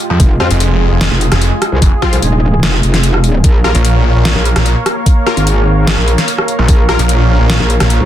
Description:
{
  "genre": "heavy wobble dubstep",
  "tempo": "148 BPM",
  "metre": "4/4",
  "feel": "half-time",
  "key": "unclear",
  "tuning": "A4 = 440 Hz",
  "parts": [
    { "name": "supersaw pad", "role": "sustained chords", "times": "0.0-8.1 s", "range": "Ab3 to F5", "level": "-19 LUFS", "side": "right 1 dB", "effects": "sidechain pumping, low-pass filter" },
    { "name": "dubstep drum kit", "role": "drums", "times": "0.0-8.0 s", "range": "hi-hat, rim click, snare drum", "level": "-16 LUFS", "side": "equal", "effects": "overdrive" },
    { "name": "snarling distorted saw bass", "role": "bass", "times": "0.1-8.0 s", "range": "F1 to F2", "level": "-11 LUFS", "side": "equal", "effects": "distortion, overdrive" },
    { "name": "metallic wobble bass", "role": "bass", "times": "0.2-8.1 s", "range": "Eb1 to F2", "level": "-12 LUFS", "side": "equal", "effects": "chorus, overdrive" },
    { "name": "electronic kick drum", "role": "drums", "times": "0.2-6.8 s", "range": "none", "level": "-9 LUFS", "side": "equal", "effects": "overdrive" },
    { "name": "supersaw stab", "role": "stabs", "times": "0.4-7.0 s", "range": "F3 to Bb4", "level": "-21 LUFS", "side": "left 4 dB", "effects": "cassette tape, dub echo" }
  ],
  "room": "digital ambience",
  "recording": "dense, heavily limited modern master",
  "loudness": "-9 LUFS",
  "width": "side -12 dB against mid",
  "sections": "0.0-8.1 A section",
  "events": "none",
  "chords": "0.0 Fmadd9; 3.4 Bbm"
}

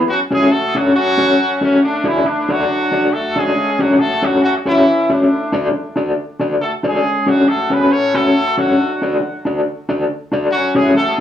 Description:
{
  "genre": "ska",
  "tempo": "138 BPM",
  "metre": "4/4",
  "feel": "swing 57% on 8ths",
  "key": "unclear",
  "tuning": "A4 = 443 Hz",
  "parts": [
    { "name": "mellow electric guitar", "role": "accompaniment", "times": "0.0-11.2 s", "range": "C#4 to D5", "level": "-15 LUFS", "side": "left 1 dB", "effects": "tremolo" },
    { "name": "clear horn section", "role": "melody", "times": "0.1-11.2 s", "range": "C#3 to C#5", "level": "-16 LUFS", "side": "left 1 dB", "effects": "tube saturation, analog delay" }
  ],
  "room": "wet studio reverb, RT60 0.6 s",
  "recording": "small room ambience",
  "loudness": "-13 LUFS",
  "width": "side -10 dB against mid",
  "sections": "0.1-11.2 A section",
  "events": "none",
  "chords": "0.1 F#m; 1.8 D; 7.0 F#m; 8.8 D; 10.5 F#m"
}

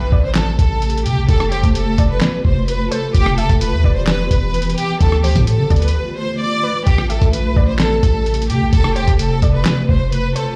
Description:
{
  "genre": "hip hop, trap",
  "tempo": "129 BPM",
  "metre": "4/4",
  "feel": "half-time",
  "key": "A minor",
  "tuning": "A4 = 444 Hz",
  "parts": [
    { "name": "warm symphonic violin section", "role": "melody", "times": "0.0-10.6 s", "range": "G4 to D5", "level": "-24 LUFS", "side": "equal", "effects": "delay" },
    { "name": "warbly dusty pluck", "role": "second line", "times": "0.0-10.6 s", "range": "B4 to E5", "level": "-32 LUFS", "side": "equal", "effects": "chorus, delay" },
    { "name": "granular cloud pad", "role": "sustained chords", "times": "0.5-10.6 s", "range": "C3 to G4", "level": "-25 LUFS", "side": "equal", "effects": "built-in reverb" },
    { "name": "warm 808-style bass", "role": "bass", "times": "0.0-10.3 s", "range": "E1 to D3", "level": "-20 LUFS", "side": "equal", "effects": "none" },
    { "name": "impact", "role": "sound effects", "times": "0.0-1.3 s", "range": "none", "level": "-36 LUFS", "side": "equal", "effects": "none" },
    { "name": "lo-fi sampler-style drum kit", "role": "drums", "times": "0.1-10.5 s", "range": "handclaps, hi-hat, kick drum, rim click, snare drum", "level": "-18 LUFS", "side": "equal", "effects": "none" }
  ],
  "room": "digital ambience",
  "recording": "played on a big sound system in a bare room, large studio reverb",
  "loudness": "-16 LUFS",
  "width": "mono",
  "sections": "0.0-10.6 A section",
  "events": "impact 0.0-1.3; break 5.9-6.9",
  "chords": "0.0 Am7; 1.3 F; 3.1 Em; 5.0 Dm; 6.9 Am7; 8.7 F"
}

